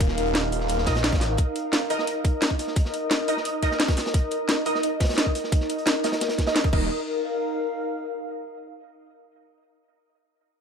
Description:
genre	dark technical drum and bass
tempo	174 BPM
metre	4/4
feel	straight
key	unclear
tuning	A4 = 440 Hz
part	phased detuned saw bass	bass	0.0-1.4, 6.7-6.9 s	Eb1 to Bb1	-26 LUFS	equal	phaser, sidechain pumping
part	crunchy breakbeat drum kit	drums	0.0-6.7 s	hi-hat, snare drum	-33 LUFS	equal	high-pass filter on hats, high-pass filter on snare, high-pass filter on room
part	drum and bass drum kit	drums	0.0-6.8 s	crash cymbal, hi-hat, snare drum	-26 LUFS	equal	none
part	electronic kick drum	drums	0.0-6.8 s	none	-23 LUFS	equal	none
part	warbly tape-like pad	texture	0.0-8.2 s	Eb4 to F5	-28 LUFS	left 1 dB	chorus, built-in reverb, sidechain pumping
part	orchestra-hit-like synth stab	stabs	0.9-6.9 s	Eb4 to Eb5	-30 LUFS	right 2 dB	built-in reverb, phaser, tape echo
room	light reverb, digital ambience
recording	none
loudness	-22 LUFS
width	side -6 dB against mid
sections	0.0-6.9 A section; 6.9-8.3 B section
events	filter sweep on synth stab 0.0-6.9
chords	0.0 Ebsus2

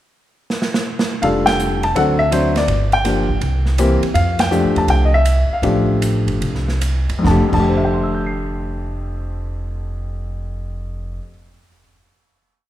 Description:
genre	jazz piano trio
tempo	140-165 BPM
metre	4/4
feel	swing 65% on 8ths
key	F major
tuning	A4 = 440 Hz
part	swinging big-band drum kit	drums	0.5-7.6 s	crash cymbal, hi-hat, kick drum, ride cymbal, snare drum	-24 LUFS	right 2 dB	none
part	warm baby grand piano	melody	1.2-11.9 s	F2 to C7	-17 LUFS	left 2 dB	none
part	upright bass	bass	1.2-11.2 s	F1 to G2	-19 LUFS	right 1 dB	none
room	moderate recital hall reverb, RT60 1.6 s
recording	recorded in a church or concert hall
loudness	-15 LUFS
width	side -13 dB against mid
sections	0.0-1.2 pickup bar; 1.2-7.2 A section; 7.2-10.7 final chord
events	drum fill 0.5-1.2; band accent 1.4, 4.3; slowing down 4.1-7.2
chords	0.0 N.C.; 1.2 F69; 2.0 D7; 2.7 Gm7; 3.4 C7; 4.1 F69

